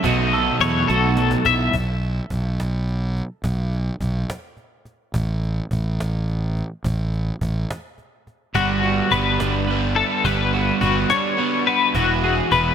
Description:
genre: math rock and midwest emo.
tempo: 70 BPM (dotted quarters).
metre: 6/8.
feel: straight.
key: unclear.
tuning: A4 = 440 Hz.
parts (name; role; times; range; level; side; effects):
twelve-string electric guitar; accompaniment; 0.0-3.5, 8.6-12.7 s; B2 to A4; -24 LUFS; right 6 dB; wide subtle chorus.
twelve-string electric guitar; arpeggios; 0.0-1.7, 8.6-12.7 s; F#4 to E5; -20 LUFS; left 7 dB; tremolo.
overdriven electric guitar; riff; 0.0-1.7, 8.5-12.7 s; G2 to E4; -24 LUFS; right 1 dB; wide subtle chorus.
fuzz fingered electric bass; bass; 0.0-12.7 s; E1 to E2; -23 LUFS; right 1 dB; overdrive.
cajon; drums; 0.0-12.7 s; none; -30 LUFS; right 1 dB; none.
room: light reverb, digital ambience.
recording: bright 1980s-style digital production.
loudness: -18 LUFS.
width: side -8 dB against mid.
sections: 0.0-1.7 A section; 1.7-12.7 B section.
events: drum fill 0.9-1.7.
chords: 0.0 B9sus4; 1.7 Asus2/B; 5.2 N.C.; 8.6 Gmaj7; 12.0 Eadd9.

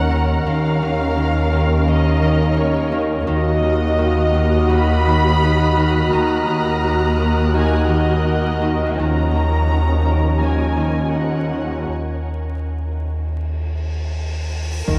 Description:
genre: cinematic, suspense film score.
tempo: 80-86 BPM.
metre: 4/4.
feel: straight.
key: unclear.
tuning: A4 = 440 Hz.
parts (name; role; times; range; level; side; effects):
muted studio violin section; melody; 0.0-15.0 s; Db5 to Cb6; -27 LUFS; equal; none.
muted chamber viola section; accompaniment; 0.0-15.0 s; F3 to Bb4; -26 LUFS; equal; none.
glassy FM pad; sustained chords; 0.0-15.0 s; Gb4 to Gb5; -30 LUFS; equal; ensemble chorus, built-in reverb.
Celtic harp; riff; 0.0-15.0 s; Eb3 to Eb4; -27 LUFS; equal; none.
muted studio cello section; bass; 0.0-15.0 s; Eb2; -26 LUFS; equal; none.
muted studio double bass section; bass; 0.0-15.0 s; Eb2; -25 LUFS; equal; none.
pure sine sub bass; drone; 0.0-15.0 s; Eb2; -25 LUFS; equal; lush chorus.
muted chamber violin section; texture; 0.0-8.6 s; Bb5 to Gb6; -34 LUFS; equal; none.
cymbal swell and impact; sound effects; 13.9-15.0 s; none; -31 LUFS; equal; none.
muted studio violin section; second line; 14.9-15.0 s; Bb4; -29 LUFS; equal; none.
room: wet huge ambient reverb, RT60 7.6 s.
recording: in a vast, echoing space, vinyl crackle.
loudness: -18 LUFS.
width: mono.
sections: 0.0-14.9 A section.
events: break 11.9-14.9; cymbal swell 13.9-14.9.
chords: 0.0 Bbm/Eb; 3.3 Ebm; 9.0 Bbm/Eb.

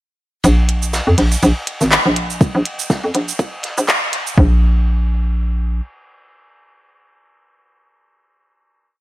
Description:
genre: minimal techno.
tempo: 122 BPM.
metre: 4/4.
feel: swing 56% on 16ths.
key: unclear.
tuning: A4 = 440 Hz.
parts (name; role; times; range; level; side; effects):
hollow knocking FM bass; bass; 0.4-5.8 s; Ab1 to F2; -14 LUFS; equal; sidechain pumping.
loose indie drum kit; drums; 0.4-4.3 s; hi-hat, ride cymbal, snare drum; -27 LUFS; equal; high-pass filter on cymbals, high-pass filter on hats, high-pass filter on snare, high-pass filter on room, dub echo.
minimal click drum kit; drums; 0.4-4.4 s; cabasa, handclaps, hi-hat; -18 LUFS; right 1 dB; none.
electronic kick drum; drums; 2.4-4.5 s; none; -13 LUFS; equal; none.
room: light reverb.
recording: echo-heavy mix, high-pass filter.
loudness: -14 LUFS.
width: side -17 dB against mid.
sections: 0.4-4.4 build; 4.4-8.3 final note.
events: build-up 0.4-4.4; filter sweep 0.4-4.4.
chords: none.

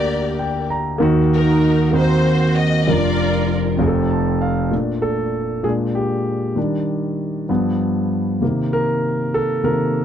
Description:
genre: gospel.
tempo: 65 BPM (dotted quarters).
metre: 6/8.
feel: straight.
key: Bb major.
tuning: A4 = 440 Hz.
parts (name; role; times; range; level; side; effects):
clear studio string section; melody; 0.0-3.8 s; Eb4 to Eb5; -22 LUFS; equal; slapback echo.
warm concert grand piano; accompaniment; 0.0-10.0 s; F1 to Bb5; -17 LUFS; equal; none.
room: light reverb.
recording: dry, close 1970s-style studio recording.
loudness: -16 LUFS.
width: side -9 dB against mid.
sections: 0.0-4.7 A section; 4.7-10.0 B section.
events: grand piano fill 0.1-1.0, 3.8-4.7; grand piano solo 4.7-10.0.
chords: 0.0 Gm/D; 1.0 Ebm; 1.9 Ebm6; 2.9 Bb/F; 3.8 F; 4.7 Bbmaj7; 5.6 Bb7; 6.6 Ebmaj7; 7.5 G7; 8.4 Cm7.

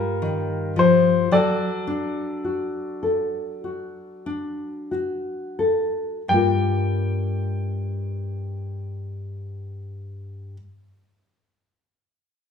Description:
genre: folk.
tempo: 42-57 BPM.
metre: 4/4.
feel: straight.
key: G minor.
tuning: A4 = 441 Hz.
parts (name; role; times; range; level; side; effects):
clear upright piano; melody; 0.0-10.5 s; F4 to G5; -22 LUFS; left 1 dB; none.
nylon-string guitar; accompaniment; 0.0-10.6 s; G2 to Bb4; -24 LUFS; left 3 dB; none.
room: wet large studio reverb, RT60 1.2 s.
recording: band playing live in one room.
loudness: -21 LUFS.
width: side -7 dB against mid.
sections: 0.0-6.3 A section; 6.3-12.0 B section.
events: slowing down 0.0-6.3.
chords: 0.0 Gm7; 1.3 D/F#; 6.3 Gm7.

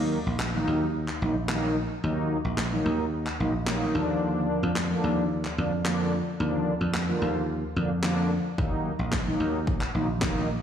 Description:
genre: dance-pop.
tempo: 110 BPM.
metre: 4/4.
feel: straight.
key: Eb harmonic minor.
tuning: A4 = 441 Hz.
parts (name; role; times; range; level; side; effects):
mellow synth brass; accompaniment; 0.0-10.5 s; D3 to F4; -28 LUFS; equal; chorus, sidechain pumping, slapback echo.
dry thumbed slap bass; bass; 0.0-10.6 s; Bb1 to F2; -28 LUFS; right 1 dB; sidechain pumping.
house drum kit; drums; 0.4-10.3 s; handclaps, kick drum, snare drum; -32 LUFS; equal; none.
room: moderate lush hall reverb, RT60 1.9 s, digital ambience.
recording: live gig heard through the venue's PA, club reverb.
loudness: -24 LUFS.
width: side -8 dB against mid.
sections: 0.0-10.6 A section.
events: none.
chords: 0.0 Ebm; 3.9 Bb/Eb; 8.6 Ebm.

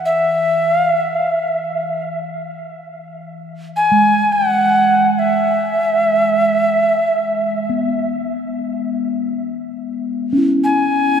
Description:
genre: world meditative, free-time meditation music.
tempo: free time.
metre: none.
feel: none.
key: E major pentatonic.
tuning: A4 = 440 Hz.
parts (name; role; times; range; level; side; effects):
bronze singing bowl; texture; 0.0-11.2 s; E3 to E4; -21 LUFS; right 1 dB; none.
breathy Native American-style cedar flute; melody; 0.1-11.2 s; E5 to G#5; -15 LUFS; equal; diffuse ambient delay.
room: wet cathedral reverb, RT60 5.7 s.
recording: in a vast, echoing space.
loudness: -14 LUFS.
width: side -8 dB against mid.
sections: 0.0-9.3 A section; 9.3-11.2 A section.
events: none.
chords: none.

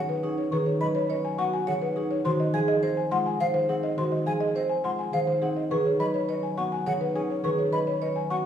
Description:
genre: classical, minimalist pattern music.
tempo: 104 BPM.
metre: 3/4.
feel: straight.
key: unclear.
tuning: A4 = 440 Hz.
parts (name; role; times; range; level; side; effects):
buzzing marimba with soft mallets; melody; 0.0-8.5 s; G#4 to G#5; -29 LUFS; left 4 dB; none.
concert harp; accompaniment; 0.0-8.5 s; D#3 to C#4; -30 LUFS; equal; none.
vibraphone with medium mallets; arpeggios; 0.0-8.5 s; D#4 to C#5; -29 LUFS; right 4 dB; none.
mellow hollow concert flute; arpeggios; 0.5-8.4 s; D#5 to C#6; -33 LUFS; left 1 dB; none.
room: wet recital hall reverb, RT60 1.5 s.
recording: heard from further back in the room.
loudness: -24 LUFS.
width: side -9 dB against mid.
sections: 0.0-8.5 A section.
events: none.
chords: 0.0 B6; 2.3 G#7; 5.7 C#7sus4.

